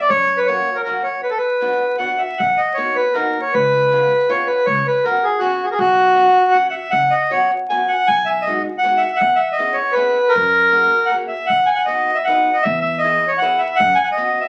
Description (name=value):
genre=musette waltz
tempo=158 BPM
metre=3/4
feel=rubato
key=B major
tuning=A4 = 440 Hz
part: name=accordion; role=melody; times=0.0-14.5 s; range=F#4 to G#5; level=-17 LUFS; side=equal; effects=none
part: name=upright bass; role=bass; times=0.1-13.9 s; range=F#1 to F#2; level=-31 LUFS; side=equal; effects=none
part: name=picked old ladder-braced acoustic guitar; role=accompaniment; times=0.5-14.4 s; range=F#3 to B4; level=-26 LUFS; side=equal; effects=none
room=wet club reverb, RT60 0.7 s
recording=very old 78 rpm record, vinyl crackle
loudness=-17 LUFS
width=mono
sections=0.0-2.4 A section; 2.4-14.5 B section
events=break 1.2-2.4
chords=0.1 F#; 1.2 Bm; 2.4 Bmaj7; 3.5 C#7; 4.7 F#sus4/C#; 5.8 Bsus2; 6.9 F#sus4; 8.1 B6; 9.2 E6; 10.3 F#add9; 11.5 B; 12.7 E; 13.8 F#sus4